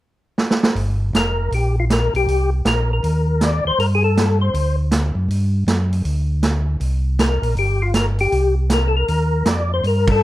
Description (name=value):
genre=soul jazz organ trio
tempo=159 BPM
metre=4/4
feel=swing 64% on 8ths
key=unclear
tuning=A4 = 440 Hz
part: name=vintage drum kit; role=drums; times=0.4-10.1 s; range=hi-hat, kick drum, ride cymbal, snare drum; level=-21 LUFS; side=right 2 dB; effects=none
part: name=mellow tonewheel organ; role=bass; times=0.8-10.2 s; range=F1 to G2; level=-18 LUFS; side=equal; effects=slow rotary speaker
part: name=percussive tonewheel organ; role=melody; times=1.2-4.8, 7.2-10.2 s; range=F4 to D5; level=-20 LUFS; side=left 3 dB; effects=slow rotary speaker, chorus vibrato
room=light reverb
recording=none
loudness=-16 LUFS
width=side -15 dB against mid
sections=0.8-10.2 A section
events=drum fill 0.4-0.8; band accent 10.0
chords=0.0 N.C.; 0.8 Gm7; 2.3 Cm7; 3.8 Gsus2; 6.8 Cm7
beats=0.01 0.38 | 0.76 1.14 1.52 1.89 | 2.27 2.65 3.03 3.41 | 3.78 4.16 4.54 4.92 | 5.30 5.67 6.05 6.43 | 6.81 7.19 7.57 7.95 | 8.32 8.70 9.08 9.46 | 9.84 10.22